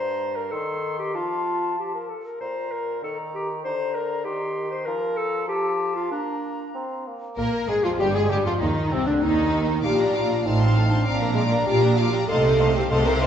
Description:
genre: quick classical-period movement for symphony orchestra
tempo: 97 BPM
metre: 2/4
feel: straight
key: Bb major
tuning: A4 = 440 Hz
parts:
  - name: clear clarinet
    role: second line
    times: 0.0-13.3 s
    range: C4 to F5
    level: -28 LUFS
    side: left 2 dB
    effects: none
  - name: concert flute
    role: second line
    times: 0.0-13.3 s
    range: C4 to C6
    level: -31 LUFS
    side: right 1 dB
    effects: none
  - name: mellow bassoon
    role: accompaniment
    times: 0.0-13.3 s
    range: G2 to Eb4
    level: -31 LUFS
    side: equal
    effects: none
  - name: clear studio violin section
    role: melody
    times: 7.4-13.3 s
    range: C4 to D6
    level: -34 LUFS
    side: left 2 dB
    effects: none
  - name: rich studio violin section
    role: second line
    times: 7.4-13.3 s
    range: C4 to A5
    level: -33 LUFS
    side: left 3 dB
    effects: none
  - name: clear studio viola section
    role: accompaniment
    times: 7.4-13.3 s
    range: C3 to F4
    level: -30 LUFS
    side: right 1 dB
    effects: none
  - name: mellow French horn section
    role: sustained chords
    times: 7.4-13.3 s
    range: Ab3 to C5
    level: -24 LUFS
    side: left 1 dB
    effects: none
  - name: clear studio cello section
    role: bass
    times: 7.4-13.3 s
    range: C2 to C3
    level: -25 LUFS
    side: right 1 dB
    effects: none
  - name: clear studio double bass section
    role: bass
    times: 7.4-13.3 s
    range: G1 to Eb2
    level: -26 LUFS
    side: right 3 dB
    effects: none
room: wet scoring stage reverb, RT60 1.6 s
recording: recorded in a church or concert hall, nothing above 7.9 kHz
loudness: -21 LUFS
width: side -8 dB against mid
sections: 0.0-7.4 A section; 7.4-13.3 B section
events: none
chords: 0.0 Gm; 0.5 Cm/Eb; 1.1 F; 2.4 N.C.; 3.0 Eb; 3.6 Bb/D; 4.3 Cm/Eb; 4.9 Bb5/F; 6.1 Bb; 7.4 Fmadd11; 8.0 Fmadd9/G; 8.6 Cmadd9; 9.8 Bb; 10.5 F/A; 11.1 Bb; 12.3 F7/C

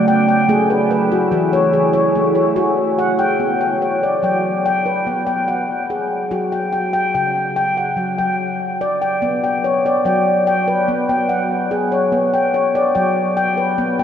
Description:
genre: world meditative, meditative tuned percussion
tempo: 144 BPM (eighths)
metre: 7/8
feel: straight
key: B minor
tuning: A4 = 440 Hz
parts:
  - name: glassy FM pad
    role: sustained chords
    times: 0.0-3.4 s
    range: C#3 to E4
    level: -21 LUFS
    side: right 3 dB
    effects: ensemble chorus, built-in reverb
  - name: handpan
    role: arpeggios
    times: 0.0-14.0 s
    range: C#3 to G5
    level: -15 LUFS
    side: left 1 dB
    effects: analog delay
room: wet huge ambient reverb, RT60 7.6 s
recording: dreamy mix soaked in reverb, cassette tape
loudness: -15 LUFS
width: side -8 dB against mid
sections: 0.0-3.4 A section; 3.4-14.0 B section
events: none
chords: 0.5 A; 3.4 Bm; 6.3 F#5; 9.2 Bm

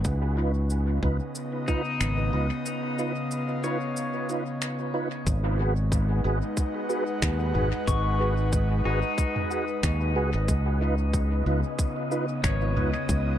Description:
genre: ambient dub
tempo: 92 BPM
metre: 4/4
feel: swing 55% on 16ths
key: G# dorian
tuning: A4 = 440 Hz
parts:
  - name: airy breathy pad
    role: sustained chords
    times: 0.0-13.4 s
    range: C#3 to F#5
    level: -32 LUFS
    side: left 1 dB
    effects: chorus
  - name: modern bright fingered electric bass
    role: bass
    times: 0.0-13.4 s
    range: G#1 to D#2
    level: -25 LUFS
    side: equal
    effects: tube saturation
  - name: electronic kick drum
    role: drums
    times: 0.0-13.2 s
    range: none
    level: -27 LUFS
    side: equal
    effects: overdrive
  - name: organic electronic drum kit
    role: drums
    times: 0.0-13.2 s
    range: finger snaps, shaker, toms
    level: -35 LUFS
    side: equal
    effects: overdrive, dub echo
  - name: tonewheel organ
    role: stabs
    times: 0.4-12.9 s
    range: D#4 to B4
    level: -32 LUFS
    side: right 2 dB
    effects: overdrive, chorus vibrato, slow rotary speaker, dub echo
  - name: pedal steel guitar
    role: arpeggios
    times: 1.7-13.4 s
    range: D#4 to C#6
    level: -35 LUFS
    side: left 5 dB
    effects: tape echo
  - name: wind-like tuned noise texture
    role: texture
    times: 5.8-13.4 s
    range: D#5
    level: -39 LUFS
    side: equal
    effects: built-in reverb
room: light reverb, digital ambience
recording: none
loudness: -24 LUFS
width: side -11 dB against mid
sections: 0.0-5.3 A section; 5.3-13.4 B section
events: break 2.7-5.3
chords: 0.1 C#9; 5.3 G#m7; 10.5 C#9

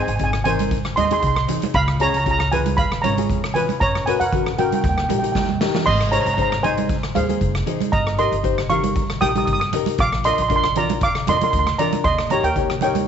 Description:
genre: calypso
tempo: 116 BPM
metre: 4/4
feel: swing 54% on 16ths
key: Ab major from 5.9 s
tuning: A4 = 437 Hz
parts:
  - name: steel pan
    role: melody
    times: 0.0-13.1 s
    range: Ab4 to Eb6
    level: -21 LUFS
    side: right 3 dB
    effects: none
  - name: nylon-string guitar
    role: accompaniment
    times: 0.0-13.1 s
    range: B#3 to Eb5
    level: -25 LUFS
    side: left 15 dB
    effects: none
  - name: upright bass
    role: bass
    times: 0.1-13.1 s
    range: Gb1 to F#2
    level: -25 LUFS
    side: equal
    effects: none
  - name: street-band drum kit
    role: drums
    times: 0.1-13.1 s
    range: crash cymbal, hi-hat, kick drum, rim click, snare drum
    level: -25 LUFS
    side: left 1 dB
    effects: none
  - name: congas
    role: percussion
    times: 0.5-13.1 s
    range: none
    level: -25 LUFS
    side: right 12 dB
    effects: none
room: light reverb, studio ambience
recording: 1960s-style stereo with parts hard left and right, nothing above 7.9 kHz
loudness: -17 LUFS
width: side -8 dB against mid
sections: 0.0-5.9 A section; 5.9-13.1 A section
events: drum fill 5.4-5.9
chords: 0.0 G#; 1.7 C#7; 3.8 F#; 4.8 D#; 5.9 Ab6; 7.9 Eb/G; 10.0 Bb; 12.0 Eb

